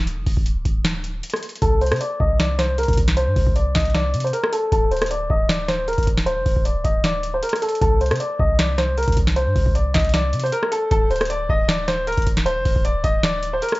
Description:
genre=hip hop, trap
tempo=155 BPM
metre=4/4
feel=half-time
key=unclear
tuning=A4 = 440 Hz
part: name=clean 808-style bass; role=bass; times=0.0-13.6 s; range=D1 to C3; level=-23 LUFS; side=equal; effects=none
part: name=booming analog drum machine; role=drums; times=0.1-13.8 s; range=hi-hat, kick drum, rim click, snare drum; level=-21 LUFS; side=equal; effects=none
part: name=clear concert grand piano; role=melody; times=1.6-13.8 s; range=A4 to Eb5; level=-22 LUFS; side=left 1 dB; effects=low-pass filter
room=digital ambience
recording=worn, warbling old tape, cassette tape, warbly pitch drift, nothing above 7.7 kHz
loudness=-18 LUFS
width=side -20 dB against mid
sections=0.0-13.8 A section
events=break 0.0-1.6; filter sweep on grand piano 0.0-10.9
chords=0.0 N.C.; 1.6 C5; 4.7 N.C.; 7.8 C5; 10.9 N.C.

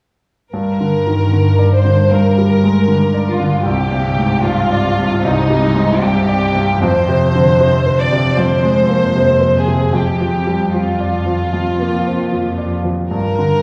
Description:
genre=cinematic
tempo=76 BPM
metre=4/4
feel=rubato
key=unclear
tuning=A4 = 444 Hz
part: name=rich studio violin section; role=second line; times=0.5-13.6 s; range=Eb4 to D5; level=-19 LUFS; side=equal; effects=none
part: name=bright grand piano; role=accompaniment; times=0.5-13.6 s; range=C2 to D5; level=-18 LUFS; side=equal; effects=none
part: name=clear studio cello section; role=bass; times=0.5-13.6 s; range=F2 to C3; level=-21 LUFS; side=equal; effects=none
room=wet recital hall reverb, RT60 1.7 s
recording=heard from further back in the room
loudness=-15 LUFS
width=mono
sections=0.5-13.6 A section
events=none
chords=0.5 Gm; 3.7 Cmadd9; 6.8 Fm; 10.0 Bb/F

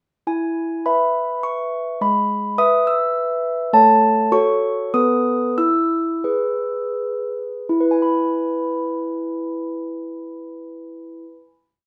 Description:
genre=classical, lullaby for handbells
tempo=78-105 BPM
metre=3/4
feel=straight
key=E major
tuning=A4 = 440 Hz
part: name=handbells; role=solo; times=0.3-11.6 s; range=G#3 to E6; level=-20 LUFS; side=equal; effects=none
room=light reverb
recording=rough home demo mix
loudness=-20 LUFS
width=mono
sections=0.3-7.7 A section; 7.7-11.9 final chord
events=slowing down 2.9-7.7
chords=0.3 E; 2.0 E/G#; 3.7 A; 4.3 F#m; 4.9 B7; 5.6 E

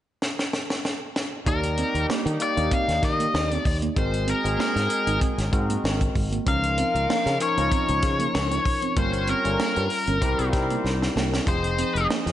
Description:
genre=polished 1980s jazz-funk pop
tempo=96 BPM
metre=4/4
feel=swing 54% on 16ths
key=Eb major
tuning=A4 = 435 Hz
part: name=tight funk drum kit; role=drums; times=0.2-12.3 s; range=hi-hat, kick drum, snare drum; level=-27 LUFS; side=equal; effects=gated reverb
part: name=nasal lead guitar with a parked wah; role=melody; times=1.5-12.1 s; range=Bb4 to F5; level=-26 LUFS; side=left 2 dB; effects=overdrive
part: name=warm horn section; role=second line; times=1.5-12.3 s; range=G3 to Eb5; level=-34 LUFS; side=right 3 dB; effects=digital delay
part: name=barky tine electric piano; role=accompaniment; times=1.5-12.3 s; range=F3 to Eb5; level=-29 LUFS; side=left 2 dB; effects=lush chorus
part: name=mellow electric guitar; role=riff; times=1.5-12.3 s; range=Ab3 to F4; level=-32 LUFS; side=right 8 dB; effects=wide subtle chorus
part: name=modern bright fingered electric bass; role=bass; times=1.5-12.3 s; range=F1 to Eb3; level=-27 LUFS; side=equal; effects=none
room=light reverb, small room ambience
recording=nothing above 10.5 kHz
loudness=-21 LUFS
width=side -12 dB against mid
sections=0.0-1.5 A section; 1.5-12.3 B section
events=drum fill 0.2-1.5, 10.8-11.5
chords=0.0 N.C.; 1.5 Ebmaj7; 4.0 Ab9; 6.5 Db69; 9.0 Gm7b5; 10.2 C7; 11.5 Fm7

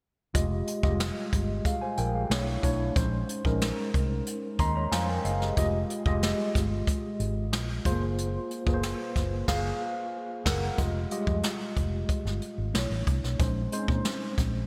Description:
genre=polished 1980s jazz-funk pop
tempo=92 BPM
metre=4/4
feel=straight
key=F minor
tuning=A4 = 443 Hz
part: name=mellow tine electric piano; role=accompaniment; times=0.3-14.7 s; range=G3 to C6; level=-33 LUFS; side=equal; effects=analog chorus
part: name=vintage muted fingered electric bass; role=bass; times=0.3-14.6 s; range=F1 to Bb2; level=-33 LUFS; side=equal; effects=none
part: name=jazz brush drum kit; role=drums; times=0.3-14.5 s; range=crash cymbal, hi-hat, kick drum, snare drum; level=-32 LUFS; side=equal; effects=gated reverb
room=light reverb, small room ambience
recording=bright 1980s-style digital production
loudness=-29 LUFS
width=mono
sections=0.3-10.8 A section; 10.8-14.7 B section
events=tine electric piano fill 4.3-5.6; band accent 9.5-10.8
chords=0.3 Fm9; 2.3 Bm11; 3.0 Bbm11; 5.6 Fm9; 7.8 Gbmaj9#11; 10.8 Fm9; 12.7 Bm11; 13.4 Bbm11

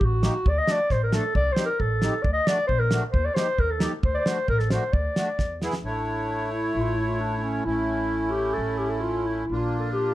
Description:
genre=klezmer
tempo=133 BPM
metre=2/4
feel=straight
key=D phrygian dominant, A phrygian dominant from 5.9 s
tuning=A4 = 441 Hz
part: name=mellow clarinet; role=melody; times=0.0-10.1 s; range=C#4 to Eb5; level=-26 LUFS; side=left 1 dB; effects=plate reverb
part: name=upright bass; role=bass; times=0.0-10.1 s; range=A1 to E2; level=-27 LUFS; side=equal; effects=none
part: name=damped 70s drum kit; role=drums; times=0.0-5.8 s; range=kick drum, snare drum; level=-26 LUFS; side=right 1 dB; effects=none
part: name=accordion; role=accompaniment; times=0.2-10.1 s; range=A3 to C#5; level=-30 LUFS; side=equal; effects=light tremolo tuning
room=moderate studio ambience, RT60 0.5 s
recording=dark, warm production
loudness=-22 LUFS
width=side -15 dB against mid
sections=0.0-5.9 A section; 5.9-10.1 B section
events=drum fill 5.4-5.9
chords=0.5 D; 1.4 Cm; 2.2 D; 3.1 Eb; 4.0 D; 5.4 E7; 5.9 A; 9.5 Bb

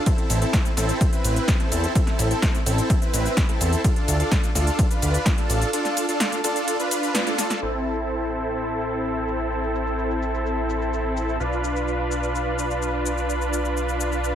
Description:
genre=EDM, festival progressive house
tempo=127 BPM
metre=4/4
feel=straight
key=A minor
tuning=A4 = 440 Hz
part: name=big supersaw lead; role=riff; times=0.0-14.3 s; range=C4 to B4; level=-24 LUFS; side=equal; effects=cassette tape, sidechain pumping, low-pass filter, ping-pong delay
part: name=big-room dance drum kit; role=drums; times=0.1-14.3 s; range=hi-hat, ride cymbal, shaker, snare drum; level=-28 LUFS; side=equal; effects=overdrive, low-pass filter on hats, low-pass filter on cymbals, low-pass filter on perc, low-pass filter on snare, low-pass filter on room
part: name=electronic kick drum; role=drums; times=0.1-5.4 s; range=none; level=-22 LUFS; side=equal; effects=overdrive
part: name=fat analog bass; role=bass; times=0.3-14.3 s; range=A1 to E2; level=-26 LUFS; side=equal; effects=sidechain pumping
room=light reverb, digital ambience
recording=none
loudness=-20 LUFS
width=side -10 dB against mid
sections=0.0-7.6 A section; 7.6-14.3 B section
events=drop 0.0-7.6; kick drops out 5.7-7.6; band accent 7.2; drum fill 7.4; filter sweep on drum 7.6-14.3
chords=0.1 Am; 3.8 Dm; 7.6 Am; 11.4 Bdim

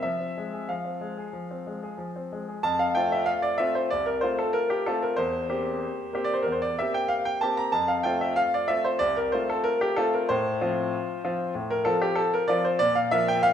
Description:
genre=classical-period piano sonatina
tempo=94 BPM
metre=4/4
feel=straight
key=F major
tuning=A4 = 441 Hz
part: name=clear grand piano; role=solo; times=0.0-13.5 s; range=C2 to Bb5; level=-24 LUFS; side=equal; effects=none
room=wet recital hall reverb, RT60 1.5 s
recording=minimal, uncompressed stereo recording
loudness=-24 LUFS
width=side -9 dB against mid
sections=0.0-2.6 A section; 2.6-13.5 A section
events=none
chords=0.0 Fm; 2.6 F; 5.2 C7/E; 7.8 F; 10.3 F/A; 12.8 Bb5

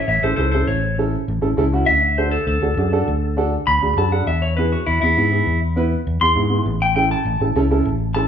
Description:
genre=latin, cumbia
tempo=201 BPM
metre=4/4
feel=straight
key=A major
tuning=A4 = 437 Hz
part: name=clean electric guitar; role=melody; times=0.0-8.3 s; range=E4 to C6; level=-20 LUFS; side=left 1 dB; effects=spring reverb
part: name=fingered electric bass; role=bass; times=0.1-8.3 s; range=A1 to G#2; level=-20 LUFS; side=left 1 dB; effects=none
part: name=dark upright piano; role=accompaniment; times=0.2-8.3 s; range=B3 to B4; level=-22 LUFS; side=right 3 dB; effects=none
room=moderate large studio reverb, RT60 0.9 s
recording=band playing live in one room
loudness=-16 LUFS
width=side -8 dB against mid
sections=0.0-8.3 A section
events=clean electric guitar solo 0.0-8.3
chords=0.0 A; 1.9 D; 4.3 E; 6.7 A

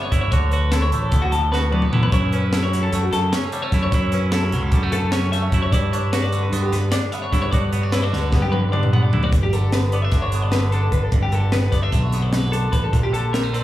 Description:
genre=math rock and midwest emo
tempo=299 BPM (eighths)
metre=9/8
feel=straight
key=G lydian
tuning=A4 = 442 Hz
part: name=twangy electric guitar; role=accompaniment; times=0.0-13.6 s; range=F#2 to F#4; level=-26 LUFS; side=right 5 dB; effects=warbly pitch drift, slapback echo
part: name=twelve-string electric guitar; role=arpeggios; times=0.0-13.6 s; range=F#4 to F#5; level=-25 LUFS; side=left 3 dB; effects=analog delay, slapback echo
part: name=growling fingered electric bass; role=bass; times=0.1-13.6 s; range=G1 to G2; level=-20 LUFS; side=equal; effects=overdrive
part: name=crisp fusion drum kit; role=drums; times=0.1-13.6 s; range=hi-hat, kick drum, snare drum, toms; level=-22 LUFS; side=equal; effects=none
room=light reverb, small room ambience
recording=live gig heard through the venue's PA, club reverb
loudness=-17 LUFS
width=side -14 dB against mid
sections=0.0-9.3 A section; 9.3-13.6 B section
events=drum fill 1.5-2.1, 8.1-9.3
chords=0.3 D6; 2.1 F#m7; 5.7 G6; 7.5 Gmaj7; 9.3 G; 12.9 Bbmaj9

